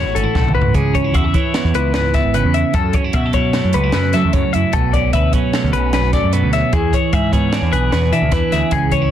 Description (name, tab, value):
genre	math rock and midwest emo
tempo	150 BPM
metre	5/4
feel	straight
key	unclear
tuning	A4 = 440 Hz
part	twelve-string electric guitar	accompaniment	0.0-9.1 s	F#2 to B4	-19 LUFS	right 7 dB	none
part	twelve-string electric guitar	arpeggios	0.0-9.1 s	G#4 to E5	-20 LUFS	left 8 dB	plate reverb
part	growling picked electric bass	bass	0.0-9.1 s	G#1 to F#3	-18 LUFS	equal	overdrive
part	compact cocktail drum kit	drums	0.2-9.0 s	hi-hat, kick drum, snare drum, toms	-20 LUFS	equal	soft clipping on snare
room	light reverb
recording	dense, heavily limited modern master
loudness	-13 LUFS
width	side -10 dB against mid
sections	0.8-9.1 A section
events	drum fill 0.4-0.8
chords	0.0 A; 0.8 C#m7; 2.7 F#m7; 4.7 Bm9; 6.7 E7